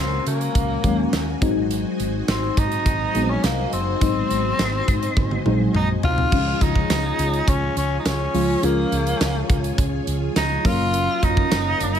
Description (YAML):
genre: 1980s-style pop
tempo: 104 BPM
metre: 4/4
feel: straight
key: Db major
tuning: A4 = 440 Hz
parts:
  - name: raspy tenor saxophone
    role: melody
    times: 0.0-12.0 s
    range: Bb3 to F4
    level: -24 LUFS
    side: equal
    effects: none
  - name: mellow FM electric piano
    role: accompaniment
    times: 0.0-12.0 s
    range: F3 to F4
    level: -25 LUFS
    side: left 2 dB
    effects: chorus, phaser
  - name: string machine, violas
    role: sustained chords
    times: 0.0-12.0 s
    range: Gb3 to Ab5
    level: -31 LUFS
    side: right 1 dB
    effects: phaser, ensemble chorus
  - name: woody fretless electric bass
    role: bass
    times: 0.0-12.0 s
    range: Gb1 to Db3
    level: -25 LUFS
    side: equal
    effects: none
  - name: big rock drum kit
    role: drums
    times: 0.3-12.0 s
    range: crash cymbal, hi-hat, kick drum, snare drum, tambourine, toms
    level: -23 LUFS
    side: right 1 dB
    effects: none
room: small room ambience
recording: none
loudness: -18 LUFS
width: side -8 dB against mid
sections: 0.0-6.3 A section; 6.3-12.0 B section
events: drum fill 5.2-6.3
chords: 0.0 Gbadd9; 1.4 Ab7; 6.3 Db; 10.6 Gbmaj7